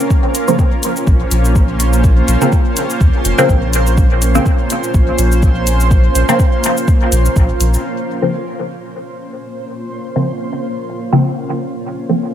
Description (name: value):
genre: dub techno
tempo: 124 BPM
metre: 4/4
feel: swing 55% on 16ths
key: Bb minor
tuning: A4 = 440 Hz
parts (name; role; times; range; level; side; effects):
- granular cloud pad; sustained chords; 0.0-12.3 s; Bb3 to Db5; -19 LUFS; right 1 dB; built-in reverb, analog chorus, sidechain pumping
- filtered dub chord stab; stabs; 0.0-12.2 s; Db3 to C4; -17 LUFS; equal; phaser, sidechain pumping, dub echo
- electronic shaker and hi-hat; drums; 0.0-7.8 s; none; -23 LUFS; left 2 dB; low-pass filter on perc, small room ambience, low-pass filter on hats
- electronic kick drum; drums; 0.1-7.5 s; none; -12 LUFS; equal; small room ambience
- soft dub sub bass; bass; 1.1-7.8 s; F1 to Eb2; -14 LUFS; equal; sidechain pumping
room: light reverb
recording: none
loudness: -11 LUFS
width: side -10 dB against mid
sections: 0.0-7.8 A section; 7.8-12.3 B section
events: filter sweep on ambient pad 7.8-12.3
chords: 0.0 Bbmadd9